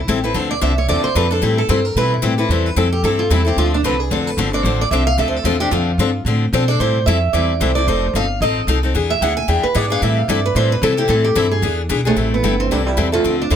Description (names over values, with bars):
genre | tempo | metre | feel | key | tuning
acoustic string swing (jazz manouche) | 223 BPM | 4/4 | swing 57% on 8ths | A minor | A4 = 440 Hz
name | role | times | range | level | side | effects
picked steel-string acoustic guitar | melody | 0.0-13.6 s | A3 to G#5 | -19 LUFS | right 2 dB | none
upright bass | bass | 0.0-13.6 s | F1 to C3 | -19 LUFS | equal | none
picked steel-string acoustic guitar | accompaniment | 0.1-13.6 s | D3 to A4 | -20 LUFS | left 6 dB | none
growling trombone | second line | 12.1-13.6 s | C3 to A3 | -23 LUFS | right 4 dB | none
room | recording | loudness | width
light reverb | close, detailed microphones | -14 LUFS | side -9 dB against mid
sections
0.0-12.2 A section; 12.2-13.6 B section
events
steel-string acoustic guitar solo 0.0-12.2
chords
0.3 Dm7; 1.4 Am7; 3.6 Dm7; 6.8 Am7; 7.9 F7; 8.9 E7; 10.0 Am7; 11.6 E7; 12.2 Am7